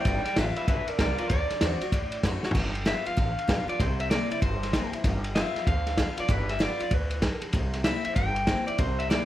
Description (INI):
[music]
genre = rockabilly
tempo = 192 BPM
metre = 4/4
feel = swing 64% on 8ths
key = G mixolydian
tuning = A4 = 440 Hz
[part]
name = electric guitar through a small old amp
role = melody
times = 0.0-9.2 s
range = Bb4 to G5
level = -30 LUFS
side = equal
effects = tape echo
[part]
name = picked steel-string acoustic guitar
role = accompaniment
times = 0.0-9.2 s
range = G2 to F#4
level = -35 LUFS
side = left 3 dB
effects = none
[part]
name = vintage drum kit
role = drums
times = 0.0-9.2 s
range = crash cymbal, kick drum, ride cymbal, snare drum, toms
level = -27 LUFS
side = equal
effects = none
[part]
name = upright bass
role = bass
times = 0.1-9.1 s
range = G1 to F#2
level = -31 LUFS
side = equal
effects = none
[sound]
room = studio ambience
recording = none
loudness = -24 LUFS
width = side -13 dB against mid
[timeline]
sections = 0.0-2.6 A section; 2.6-9.2 B section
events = clean electric guitar solo 0.0-2.6; drum fill 2.4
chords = 0.1 G7; 1.3 D7; 2.6 G7; 3.8 C7; 5.0 G7; 7.5 C7